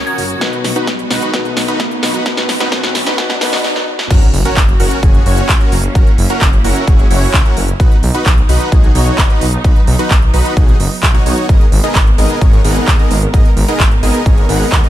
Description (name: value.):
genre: EDM, festival progressive house.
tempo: 130 BPM.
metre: 4/4.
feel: straight.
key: unclear.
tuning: A4 = 440 Hz.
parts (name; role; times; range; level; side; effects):
glassy synth bell; melody; 0.0-0.5 s; G#6; -23 LUFS; right 1 dB; chorus, digital delay.
dark concert grand piano; accompaniment; 0.0-4.1 s; B2 to B4; -22 LUFS; left 4 dB; sidechain pumping, digital delay.
rich studio string section; sustained chords; 0.0-14.9 s; F#3 to A#4; -24 LUFS; right 2 dB; sidechain pumping.
dense compressed supersaw; riff; 0.0-14.9 s; B3 to F#5; -19 LUFS; equal; sidechain pumping, low-pass filter, digital delay.
detuned saw bass; bass; 0.0-14.8 s; F#1 to D#2; -16 LUFS; equal; sidechain pumping.
riser and impact; sound effects; 0.0-6.0 s; none; -23 LUFS; right 1 dB; none.
big-room dance drum kit; drums; 0.1-14.9 s; crash cymbal, handclaps, hi-hat, snare drum; -18 LUFS; right 1 dB; none.
electronic kick drum; drums; 0.4-14.8 s; none; -10 LUFS; equal; high-pass filter on kick.
room: little or no reverb.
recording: high-pass filter.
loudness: -10 LUFS.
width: side -13 dB against mid.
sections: 0.0-4.1 A section; 4.1-14.9 B section.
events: build-up 0.0-4.1; drum fill 0.0-3.6, 3.6-4.1; riser 0.0-3.6; stop 3.6-4.1; drop 4.1-14.9; impact 4.1-6.0.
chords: 0.4 B; 4.1 F#; 7.8 B; 11.5 G#madd9.